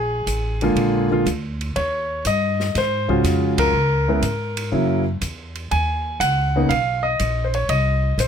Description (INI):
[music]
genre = jazz piano trio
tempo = 122 BPM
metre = 4/4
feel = swing 69% on 8ths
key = Bb minor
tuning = A4 = 441 Hz
[part]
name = clear concert grand piano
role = melody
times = 0.0-8.3 s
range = Db3 to Ab5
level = -20 LUFS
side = equal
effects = none
[part]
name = upright bass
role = bass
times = 0.0-8.3 s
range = A1 to Ab2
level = -23 LUFS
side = equal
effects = none
[part]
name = open jazz drum kit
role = drums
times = 0.3-8.3 s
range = hi-hat, kick drum, ride cymbal, snare drum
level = -30 LUFS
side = right 1 dB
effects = none
[sound]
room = little or no reverb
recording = close, detailed microphones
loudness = -18 LUFS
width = side -7 dB against mid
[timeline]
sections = 0.0-8.3 A section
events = band accent 3.5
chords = 0.0 Bb7; 1.8 Ebm11; 3.7 Db5; 4.7 Gb7; 5.7 Bmaj9; 7.7 Cm7